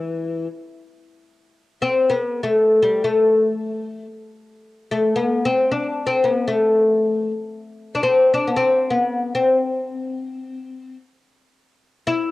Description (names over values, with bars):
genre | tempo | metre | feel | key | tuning
Turkish makam ensemble | free time | none | none | A makam huseyni | A4 = 437 Hz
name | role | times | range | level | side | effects
oud | solo | 0.0-12.3 s | E3 to E4 | -17 LUFS | left 2 dB | cassette tape
room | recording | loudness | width
moderate spring reverb, RT60 1.6 s, studio ambience | home recording on cassette | -17 LUFS | side -17 dB against mid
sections
0.0-12.3 A section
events
none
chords
none